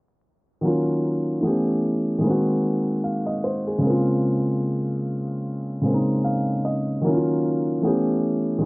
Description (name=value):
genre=hip hop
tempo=75 BPM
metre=4/4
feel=swing 58% on 16ths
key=Bb minor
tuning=A4 = 440 Hz
part: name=felt-muted upright piano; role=accompaniment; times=0.6-8.7 s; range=Db3 to F5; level=-20 LUFS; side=equal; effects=low-pass filter
room=wet studio reverb, RT60 0.5 s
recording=vinyl crackle, low-pass filter, nothing above 10.5 kHz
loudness=-20 LUFS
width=side -28 dB against mid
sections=0.6-8.7 A section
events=felt piano fill 5.8-7.0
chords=0.6 Ebm7; 1.4 A9; 2.2 Ab7; 3.8 Bbm7; 7.0 Ebm7; 7.8 A9